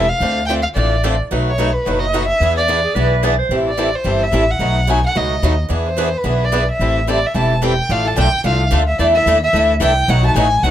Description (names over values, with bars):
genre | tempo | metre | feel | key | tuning
acoustic string swing (jazz manouche) | 219 BPM | 4/4 | swing 58% on 8ths | A minor | A4 = 439 Hz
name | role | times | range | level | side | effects
dark violin | melody | 0.0-10.7 s | B4 to A5 | -18 LUFS | equal | plate reverb
picked swing-style acoustic guitar | accompaniment | 0.0-10.7 s | B2 to A4 | -20 LUFS | left 3 dB | none
picked swing-style acoustic guitar | accompaniment | 0.0-10.7 s | B2 to B4 | -24 LUFS | right 6 dB | none
upright bass | bass | 0.0-10.7 s | E1 to E2 | -18 LUFS | equal | none
bright clarinet | second line | 2.8-3.6 s | G#4 to D5 | -21 LUFS | right 4 dB | none
room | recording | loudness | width
light reverb | close, detailed microphones | -14 LUFS | side -11 dB against mid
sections
0.0-7.9 A section; 7.9-10.7 B section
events
none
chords
0.2 Dm7; 1.3 B7; 2.4 E7; 3.5 Am7; 4.6 B7; 5.7 E7; 6.8 Am7; 7.9 Dm; 9.0 E7sus4; 10.1 B7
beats
| 0.22 0.49 0.77 1.04 | 1.31 1.59 1.86 2.14 | 2.41 2.68 2.96 3.23 | 3.51 3.78 4.05 4.33 | 4.60 4.88 5.15 5.42 | 5.70 5.97 6.25 6.52 | 6.79 7.07 7.34 7.62 | 7.89 8.16 8.44 8.71 | 8.99 9.26 9.54 9.81 | 10.08 10.36 10.63